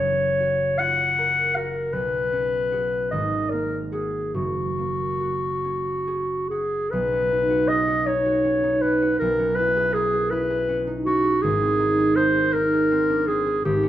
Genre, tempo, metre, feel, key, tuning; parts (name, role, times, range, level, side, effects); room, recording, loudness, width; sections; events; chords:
classical, impressionist duo for clarinet and harp; 45-55 BPM (dotted quarters); 6/8; rubato; F# major, B major from 6.9 s; A4 = 440 Hz
mellow clarinet; melody; 0.0-13.9 s; F#4 to F#5; -22 LUFS; left 1 dB
concert harp; accompaniment; 0.0-13.9 s; F#1 to A#4; -25 LUFS; right 2 dB
moderate recital hall reverb, RT60 1.4 s; -20 LUFS; side -12 dB against mid
0.0-6.9 A section; 6.9-13.9 B section
0.0 F#maj7; 1.9 Bsus2; 3.1 G#sus2; 4.3 F#add9; 6.9 Badd9; 9.2 C#m7/B; 11.4 G#add9